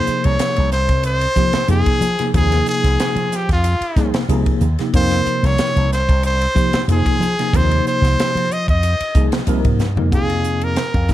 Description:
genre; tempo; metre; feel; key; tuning
electric jazz fusion; 92 BPM; 4/4; swing 54% on 16ths; F minor; A4 = 443 Hz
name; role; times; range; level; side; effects
brilliant trumpet; melody; 0.0-11.1 s; F4 to Eb5; -20 LUFS; equal; tape echo
tine electric piano; accompaniment; 0.0-11.1 s; C3 to Bb4; -21 LUFS; equal; overdrive, fast stereo tremolo, wide subtle chorus
slap bass with an envelope filter; bass; 0.1-11.1 s; C2 to F3; -18 LUFS; equal; none
crisp fusion drum kit; drums; 0.1-11.1 s; hi-hat, kick drum, ride cymbal, snare drum, toms; -21 LUFS; equal; none
room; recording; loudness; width
light reverb; none; -14 LUFS; side -13 dB against mid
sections
0.0-10.1 A section; 10.1-11.1 B section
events
drum fill 9.8-10.1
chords
0.0 Fm9; 10.1 Fm7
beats
0.39 1.04 1.70 | 2.35 3.00 3.65 4.30 | 4.95 5.60 6.25 6.89 | 7.54 8.19 8.84 9.48 | 10.13 10.78

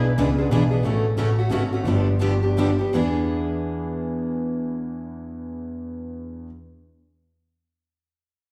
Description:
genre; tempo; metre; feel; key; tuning
acoustic string swing (jazz manouche); 154-182 BPM; 3/4; swing 60% on 8ths; E mixolydian; A4 = 440 Hz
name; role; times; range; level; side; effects
clear clarinet; melody; 0.0-0.5 s; E4; -37 LUFS; equal; none
warm violin; second line; 0.0-0.5 s; B4; -38 LUFS; equal; none
picked steel-string acoustic guitar; accompaniment; 0.0-6.5 s; C#3 to G#4; -28 LUFS; equal; none
picked steel-string acoustic guitar; accompaniment; 0.0-6.5 s; D3 to B4; -32 LUFS; equal; none
dark grand piano; bass; 0.0-6.5 s; G1 to E2; -26 LUFS; equal; none
room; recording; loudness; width
wet recital hall reverb, RT60 1.3 s; recorded in a church or concert hall; -23 LUFS; mono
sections
0.8-2.9 A section; 2.9-5.3 B section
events
slowing down 0.8-2.9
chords
0.0 E7; 0.8 A6; 1.9 G7; 2.9 E7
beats
0.18 0.51 | 0.84 1.17 1.51 | 1.85 2.20 2.57 | 2.95 3.34 3.73 | 4.12 4.50 4.89

